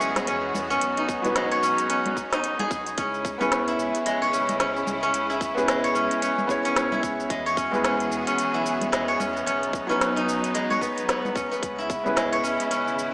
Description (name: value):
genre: organic downtempo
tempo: 111 BPM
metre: 4/4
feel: swing 59% on 16ths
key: C# minor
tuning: A4 = 439 Hz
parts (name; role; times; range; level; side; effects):
- felt-muted upright piano; accompaniment; 0.0-13.1 s; F#3 to C#5; -28 LUFS; equal; sidechain pumping, digital delay, shimmer reverb
- rich symphonic string section; sustained chords; 0.0-13.1 s; C#3 to G#4; -31 LUFS; equal; vintage 12-bit sampler grit, sidechain pumping, shimmer reverb
- steel-string zither; arpeggios; 0.0-13.1 s; G#3 to C#5; -24 LUFS; equal; digital delay, shimmer reverb
- warm sub bass; bass; 0.0-13.1 s; F#1 to E2; -46 LUFS; equal; tube saturation, sidechain pumping
- organic electronic drum kit; drums; 0.0-13.1 s; cabasa, congas, hi-hat, snare drum; -29 LUFS; equal; none
- electronic kick drum; drums; 1.1-12.0 s; none; -31 LUFS; equal; none
room: wet recital hall reverb, RT60 1.5 s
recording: small speaker sound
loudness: -22 LUFS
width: side -28 dB against mid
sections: 0.0-3.0 A section; 3.0-13.1 A section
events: none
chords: 0.0 E; 0.8 B; 3.0 C#m7; 7.3 E; 9.5 B; 11.6 C#m7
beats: 0.28 | 0.82 1.36 1.90 2.44 | 2.98 3.52 4.06 4.60 | 5.14 5.68 6.22 6.76 | 7.30 7.84 8.38 8.93 | 9.47 10.01 10.55 11.09 | 11.63 12.17 12.71